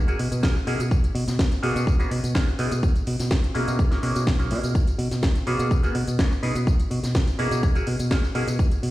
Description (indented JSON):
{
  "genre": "filtered disco house",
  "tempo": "125 BPM",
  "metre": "4/4",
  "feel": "straight",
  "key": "unclear",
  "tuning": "A4 = 440 Hz",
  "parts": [
    { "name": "clav", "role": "accompaniment", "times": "0.0-8.5 s", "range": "A#3 to G#4", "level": "-29 LUFS", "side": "equal", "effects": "phaser, sidechain pumping" },
    { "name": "fingered electric bass", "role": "bass", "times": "0.0-8.9 s", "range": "B1 to B2", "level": "-26 LUFS", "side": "equal", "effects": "tube saturation, sidechain pumping" },
    { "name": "house drum kit", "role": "drums", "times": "0.1-8.9 s", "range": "hi-hat, snare drum, tambourine", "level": "-31 LUFS", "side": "equal", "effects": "sidechain pumping on hats, sidechain pumping on perc, sidechain pumping on cymbals" },
    { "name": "electronic kick drum", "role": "drums", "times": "0.4-8.7 s", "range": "none", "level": "-21 LUFS", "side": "equal", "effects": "none" }
  ],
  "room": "light reverb, digital ambience",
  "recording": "played on a big sound system in a bare room, stone room reverb",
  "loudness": "-20 LUFS",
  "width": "side -16 dB against mid",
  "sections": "0.0-8.9 A section",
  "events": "none",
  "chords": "0.0 F#9/B; 0.9 G#m11/B; 2.6 C#m7/B; 3.8 F#9/B; 4.8 G#m11/B; 6.4 C#m7/B; 7.6 F#9/B",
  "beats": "0.43 | 0.91 1.39 1.87 2.35 | 2.83 3.31 3.79 4.27 | 4.75 5.23 5.71 6.19 | 6.67 7.15 7.63 8.11 | 8.59"
}